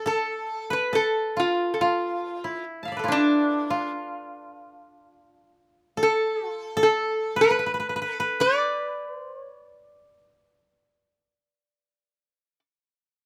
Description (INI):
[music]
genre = japanese traditional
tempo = 64-77 BPM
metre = 4/4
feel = rubato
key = D kumoi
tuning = A4 = 440 Hz
[part]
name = lap resonator guitar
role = melody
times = 0.0-12.6 s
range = D4 to D5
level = -26 LUFS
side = equal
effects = none
[part]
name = koto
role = second line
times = 0.0-12.6 s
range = D4 to A5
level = -30 LUFS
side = equal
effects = none
[sound]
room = light reverb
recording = close, detailed microphones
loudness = -25 LUFS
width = mono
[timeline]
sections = 0.1-13.3 A section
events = none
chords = none